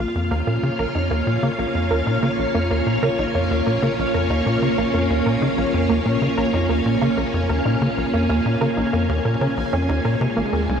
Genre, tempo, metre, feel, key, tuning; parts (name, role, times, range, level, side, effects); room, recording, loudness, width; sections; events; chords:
ambient, sequencer-driven space music; 94 BPM; 4/4; straight; Bb minor; A4 = 438 Hz
string machine, full ensemble; sustained chords; 0.0-10.8 s; Ab3 to F5; -21 LUFS; equal; ensemble chorus
wide unison pluck; arpeggios; 0.0-10.7 s; Bb3 to Bb4; -26 LUFS; right 2 dB; auto-pan, ping-pong delay
tight sequencer bass; riff; 0.0-10.8 s; Ab1 to Db3; -22 LUFS; equal; ping-pong delay
analog drone; bass; 1.5-10.8 s; Bb1; -42 LUFS; equal
bubbling stepped-filter texture; texture; 0.0-10.8 s; Ab5; -36 LUFS; right 3 dB; chorus, built-in reverb
wet huge ambient reverb, RT60 7.9 s; -18 LUFS; side -7 dB against mid
0.0-10.8 A section
fade-in on synth texture 0.0-10.8
0.0 Bbm; 10.2 Ab